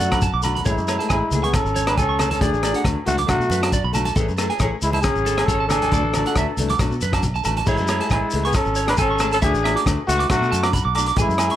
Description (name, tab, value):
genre	highlife guitar band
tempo	137 BPM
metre	4/4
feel	swing 53% on 16ths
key	A major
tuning	A4 = 437 Hz
part	growling trumpet	melody	0.0-11.6 s	E4 to B4	-23 LUFS	left 2 dB	analog delay
part	breathy alto saxophone	second line	0.0-11.6 s	G#3 to D4	-29 LUFS	right 3 dB	none
part	electric guitar at the edge of break-up	arpeggios	0.0-11.6 s	A4 to D6	-26 LUFS	right 8 dB	analog delay
part	fingered electric bass	bass	0.0-11.5 s	G#1 to B2	-24 LUFS	equal	none
part	crunchy breakbeat drum kit	drums	0.0-11.6 s	crash cymbal, hi-hat, kick drum, rim click	-24 LUFS	equal	none
part	congas	percussion	0.0-7.7 s	none	-31 LUFS	right 1 dB	none
part	shekere	percussion	0.0-11.5 s	none	-30 LUFS	left 3 dB	none
part	nylon-string guitar	accompaniment	0.1-11.6 s	E3 to G#4	-29 LUFS	left 7 dB	none
part	agogo bells	percussion	0.1-11.5 s	none	-31 LUFS	right 2 dB	none
room	light reverb, small room ambience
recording	none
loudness	-17 LUFS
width	side -12 dB against mid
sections	0.0-7.7 A section; 7.7-11.6 A section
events	none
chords	0.0 Bm7; 0.7 Amaj7; 2.4 Dadd9; 3.3 Bm7; 4.2 Amaj7; 5.9 Dadd9; 6.8 Bm7; 7.7 Amaj7; 9.4 Dadd9; 10.3 Bm7